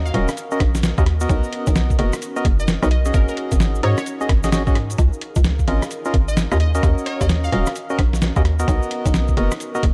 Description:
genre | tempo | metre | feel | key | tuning
UK garage, two-step garage | 130 BPM | 4/4 | swing 63% on 16ths | unclear | A4 = 440 Hz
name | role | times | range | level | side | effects
glassy wavetable pluck | melody | 0.0-7.9 s | Bb4 to F5 | -33 LUFS | equal | chorus, digital delay
airy breathy pad | sustained chords | 0.0-9.9 s | Db4 to F5 | -36 LUFS | equal | none
percussive organ stab | stabs | 0.0-9.9 s | Cb4 to Eb5 | -27 LUFS | equal | chorus, digital delay
hollow knocking FM bass | bass | 0.0-9.9 s | Eb1 to Ab2 | -22 LUFS | equal | none
boom bap sampler-style drum kit | drums | 0.1-9.9 s | hi-hat, rim click, snare drum | -26 LUFS | equal | studio reverb
cabasa | percussion | 0.1-9.8 s | none | -40 LUFS | equal | none
electronic kick drum | drums | 0.6-9.9 s | none | -20 LUFS | equal | studio reverb
room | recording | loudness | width
little or no reverb | dark, warm production | -19 LUFS | mono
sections
0.0-9.9 A section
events
none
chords
0.0 Ebm7; 1.3 Cbmaj7; 3.1 Ab7sus4; 5.0 Db69; 6.6 Ebm7; 8.7 Cbmaj7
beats
0.37 0.83 | 1.29 1.76 2.22 2.68 | 3.14 3.60 4.06 4.53 | 4.99 5.45 5.91 6.37 | 6.83 7.29 7.76 8.22 | 8.68 9.14 9.60

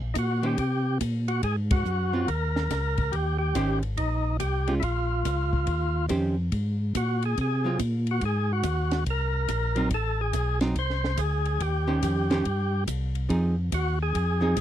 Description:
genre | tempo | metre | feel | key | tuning
soul jazz organ trio | 142 BPM | 4/4 | swing 65% on 8ths | Eb mixolydian | A4 = 439 Hz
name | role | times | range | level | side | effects
mellow tonewheel organ | bass | 0.0-14.6 s | Ab1 to C3 | -27 LUFS | equal | overdrive, chorus vibrato, slow rotary speaker
percussive tonewheel organ | melody | 0.1-14.6 s | Eb4 to C5 | -29 LUFS | equal | overdrive, fast rotary speaker
compact cocktail drum kit | drums | 0.2-14.6 s | hi-hat, kick drum, ride cymbal, snare drum | -32 LUFS | equal | none
archtop guitar, miked and amplified | accompaniment | 0.4-14.6 s | Eb3 to C5 | -26 LUFS | right 2 dB | none
room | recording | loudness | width
little or no reverb | dry, close 1970s-style studio recording | -24 LUFS | side -11 dB against mid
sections
0.0-14.6 A section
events
band accent 1.6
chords
0.0 Eb6 (rootless); 1.4 Ab7sus2; 3.1 Eb13; 4.8 Bbm; 5.7 Eb13; 6.5 Ab9; 9.9 Am; 11.6 Eb13; 13.3 Fm7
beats
0.16 0.58 1.01 | 1.43 1.85 2.28 2.70 | 3.13 3.55 3.98 4.40 | 4.83 5.25 5.67 6.10 | 6.52 6.95 7.37 7.79 | 8.22 8.64 9.07 9.49 | 9.91 10.34 10.76 11.18 | 11.61 12.03 12.45 12.87 | 13.30 13.72 14.14 14.56

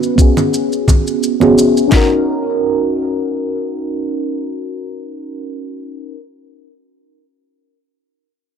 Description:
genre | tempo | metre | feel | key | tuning
sunset chillout | 86 BPM | 4/4 | swing 54% on 16ths | unclear | A4 = 439 Hz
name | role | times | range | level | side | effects
mellow FM electric piano | accompaniment | 0.0-6.2 s | B3 to B4 | -15 LUFS | moving between left 5 dB and right 6 dB | chorus, auto-pan, low-pass filter, ping-pong delay
shaker and congas | drums | 0.0-1.9 s | none | -19 LUFS | right 2 dB | none
smooth R&B drum kit | drums | 0.2-2.1 s | handclaps, kick drum, snare drum | -11 LUFS | equal | none
room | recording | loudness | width
light reverb | none | -13 LUFS | side -7 dB against mid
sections
0.0-1.9 A section; 1.9-4.7 B section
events
filter sweep on FM electric piano 0.0-1.9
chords
0.0 F#sus24/B; 1.9 F#6/C#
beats
0.53 1.23 | 1.92 2.62 3.32 4.02

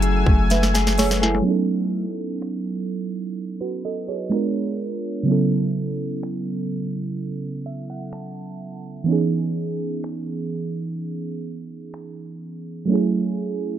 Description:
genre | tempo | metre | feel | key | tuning
contemporary R&B | 63 BPM | 4/4 | straight | unclear | A4 = 443 Hz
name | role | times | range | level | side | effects
mellow FM electric piano | accompaniment | 0.0-13.8 s | C#3 to A5 | -23 LUFS | right 3 dB | chorus
lush unison pad | sustained chords | 0.0-1.4 s | A3 to E6 | -29 LUFS | right 1 dB | chorus
mellow electric guitar | arpeggios | 0.0-2.1 s | F#3 to G#4 | -25 LUFS | left 7 dB | spring reverb, tape echo
soft 808-style bass | bass | 0.0-1.4 s | F#1 | -21 LUFS | equal | none
trap drum kit | drums | 0.0-12.2 s | finger snaps, hi-hat, kick drum, snare drum | -20 LUFS | equal | none
room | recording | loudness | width
little or no reverb | dark, warm production, low-pass filter | -21 LUFS | side -10 dB against mid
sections
0.0-1.5 A section; 1.5-13.8 B section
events
drum fill 0.5-1.5; filter sweep 1.5-13.8; FM electric piano fill 7.2-9.1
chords
0.0 F#m9; 1.5 B9; 4.3 G#dim7; 5.3 A69/C#; 9.1 C#m7; 12.9 F#m9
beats
0.50 | 1.46 2.41 3.36 4.31 | 5.27 6.22 7.17 8.12 | 9.07 10.03 10.98 11.93 | 12.88

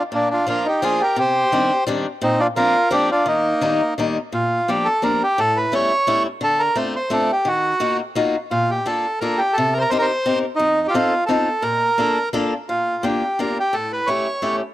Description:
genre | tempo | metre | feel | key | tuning
musette | 172 BPM | 3/4 | straight | Eb major, Bb major from 4.3 s | A4 = 439 Hz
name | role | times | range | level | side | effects
bandoneon | melody | 0.0-14.6 s | Bb3 to C#5 | -18 LUFS | right 1 dB | none
picked swing-style acoustic guitar | accompaniment | 0.1-14.6 s | F2 to Bb4 | -22 LUFS | left 2 dB | none
room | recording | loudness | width
light reverb, small room ambience | dry, close 1970s-style studio recording | -17 LUFS | side -14 dB against mid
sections
0.0-4.3 A section; 4.3-12.7 B section; 12.7-14.7 B section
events
none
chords
0.1 Bb; 1.2 Cmadd9; 2.2 Bbadd9; 3.3 Eb; 4.3 Bb6; 5.4 A7; 6.4 Dm7; 7.5 Ebmadd9; 8.5 Bbmaj7; 9.6 Cm7; 10.6 F7; 11.6 Bbmaj7; 12.7 Bb6; 13.7 A7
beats
| 0.11 0.47 0.82 | 1.17 1.52 1.87 | 2.21 2.56 2.91 | 3.27 3.62 3.98 | 4.33 4.68 5.04 | 5.39 5.74 6.08 | 6.43 6.78 7.12 | 7.47 7.82 8.17 | 8.53 8.88 9.22 | 9.57 9.92 10.26 | 10.61 10.95 11.29 | 11.64 11.99 12.34 | 12.69 13.04 13.39 | 13.73 14.08 14.43

